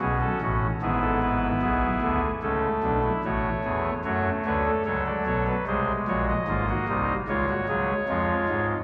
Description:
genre	classical, baroque-style 4-part fugue for pipe organ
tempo	74 BPM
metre	4/4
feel	straight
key	unclear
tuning	A4 = 440 Hz
part	pipe organ, soft reed	solo	0.0-8.8 s	G#1 to D#5	-26 LUFS	equal	none
room	wet cathedral reverb, RT60 4.2 s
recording	heard from further back in the room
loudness	-26 LUFS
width	mono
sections	0.0-4.0 A section; 4.0-8.8 B section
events	none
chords	0.0 B7(no3); 0.8 E/G#; 2.4 A; 4.0 F#m; 5.7 G#7; 7.3 C#

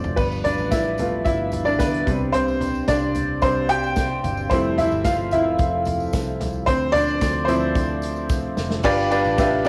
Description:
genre	piano-driven pop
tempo	111 BPM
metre	4/4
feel	straight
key	C major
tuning	A4 = 439 Hz
part	bright upright piano	accompaniment	0.0-9.7 s	G2 to G5	-23 LUFS	equal	cassette tape
part	mellow tonewheel organ	sustained chords	0.0-8.8 s	C3 to B4	-33 LUFS	equal	slow rotary speaker, cassette tape
part	picked electric bass	bass	0.0-9.7 s	F1 to D2	-32 LUFS	equal	none
part	natural country drum kit	drums	0.0-9.7 s	crash cymbal, hi-hat, kick drum, ride cymbal, snare drum, toms	-29 LUFS	equal	cassette tape
part	tambourine	percussion	0.0-9.7 s	none	-47 LUFS	equal	none
room	moderate spring reverb, RT60 2.0 s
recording	home recording on cassette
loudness	-21 LUFS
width	mono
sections	0.0-8.8 A section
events	drum fill 0.0, 8.3-8.8; upright piano solo 0.0-8.8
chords	0.2 G7; 2.1 Csus2; 4.5 Fmaj7; 6.7 Dm7; 8.8 G7

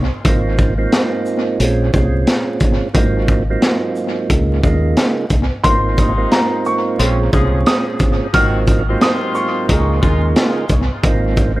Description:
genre	hip hop, boom-bap hip-hop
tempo	89 BPM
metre	4/4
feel	swing 60% on 16ths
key	Ab major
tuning	A4 = 440 Hz
part	deep dub fingered electric bass	bass	0.0-11.6 s	Ab1 to Eb2	-17 LUFS	equal	none
part	percussive tonewheel organ	accompaniment	0.2-11.6 s	Ab2 to F4	-20 LUFS	right 3 dB	slow rotary speaker, high-pass filter, low-pass filter
part	crunchy breakbeat drum kit	drums	0.2-11.6 s	hi-hat, kick drum, shaker, snare drum	-16 LUFS	equal	tape echo
part	dark upright piano	melody	5.6-9.9 s	Bb5 to F6	-21 LUFS	equal	high-pass filter, low-pass filter, tape echo
part	warm horn section	stabs	6.0-10.3 s	Bb2 to Ab4	-26 LUFS	left 3 dB	high-pass filter, low-pass filter, tape echo
room	light reverb, small room ambience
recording	echo-heavy mix, vinyl crackle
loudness	-13 LUFS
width	side -17 dB against mid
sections	0.0-11.6 A section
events	none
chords	0.2 Ab69; 1.6 Bbm9; 2.9 Ab13; 4.3 Db69; 5.6 Ab69; 7.0 Bbm9; 8.3 Ab13; 9.7 Db69; 11.0 Ab69

